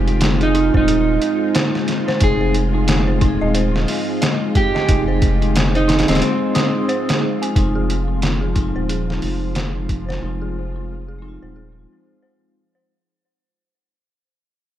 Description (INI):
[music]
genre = trip hop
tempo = 90 BPM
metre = 4/4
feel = swing 59% on 16ths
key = F minor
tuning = A4 = 440 Hz
[part]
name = vibraphone with soft mallets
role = accompaniment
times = 0.0-12.9 s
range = Ab3 to C5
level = -24 LUFS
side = equal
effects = tremolo, tape echo
[part]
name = string machine, cellos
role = sustained chords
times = 0.0-12.9 s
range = F3 to F4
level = -27 LUFS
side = equal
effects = ensemble chorus
[part]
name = dark detuned synth bell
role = arpeggios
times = 0.0-12.9 s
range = Eb4 to Eb6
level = -27 LUFS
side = left 1 dB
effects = chorus, low-pass filter, tape echo
[part]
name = round analog bass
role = bass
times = 0.0-11.9 s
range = Eb1 to F1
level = -21 LUFS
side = equal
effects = none
[part]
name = trip hop sampler-style drum kit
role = drums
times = 0.1-10.2 s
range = hi-hat, kick drum, snare drum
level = -20 LUFS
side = equal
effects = overdrive, studio reverb
[part]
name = electric slide guitar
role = melody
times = 0.4-7.5 s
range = C4 to Ab4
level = -21 LUFS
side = right 2 dB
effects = vintage 12-bit sampler grit, tape echo
[sound]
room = light reverb, digital ambience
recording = echo-heavy mix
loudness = -15 LUFS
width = side -12 dB against mid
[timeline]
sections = 0.0-7.6 A section; 7.6-12.9 B section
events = break 6.2-7.6; fade-out 7.6-12.9; filter sweep on synth bell 7.6-12.9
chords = 0.0 Fm7